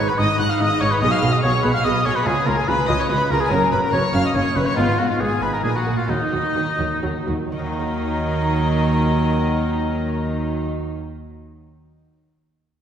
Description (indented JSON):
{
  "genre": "classical, baroque-style concerto movement with solo episodes",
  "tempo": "121-145 BPM",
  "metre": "3/4",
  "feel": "straight",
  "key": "Eb minor",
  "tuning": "A4 = 440 Hz",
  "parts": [
    { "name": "warm chamber violin section", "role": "melody", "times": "0.0-10.7 s", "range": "Eb5 to Gb6", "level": "-27 LUFS", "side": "left 4 dB", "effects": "none" },
    { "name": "warm oboe", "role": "melody", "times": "0.0-10.7 s", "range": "Eb4 to Gb5", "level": "-24 LUFS", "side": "left 1 dB", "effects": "none" },
    { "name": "warm chamber violin section", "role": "second line", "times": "0.0-10.7 s", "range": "Eb4 to Gb5", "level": "-28 LUFS", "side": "equal", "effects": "none" },
    { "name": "dark chamber viola section", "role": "accompaniment", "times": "0.0-10.6 s", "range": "Gb3 to Ab4", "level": "-27 LUFS", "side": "equal", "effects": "none" },
    { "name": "lute", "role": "accompaniment", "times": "0.0-10.9 s", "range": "Gb2 to Cb5", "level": "-30 LUFS", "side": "right 2 dB", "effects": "none" },
    { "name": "rich chamber double bass section", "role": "bass", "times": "0.0-10.7 s", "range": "Gb1 to Eb2", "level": "-24 LUFS", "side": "right 1 dB", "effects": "none" },
    { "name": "warm chamber cello section", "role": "bass", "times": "0.0-10.7 s", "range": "Gb2 to Eb3", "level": "-26 LUFS", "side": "right 1 dB", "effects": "none" }
  ],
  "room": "wet scoring stage reverb, RT60 2.0 s",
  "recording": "heard from further back in the room",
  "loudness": "-18 LUFS",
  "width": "side -8 dB against mid",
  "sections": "0.0-7.5 A section; 7.5-10.5 B section",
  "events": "slowing down 4.1-7.5",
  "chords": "0.0 Abm; 1.0 Abm/Cb; 2.3 Db7; 3.5 Gb; 4.8 Abm; 5.6 Bb; 6.1 Ebm"
}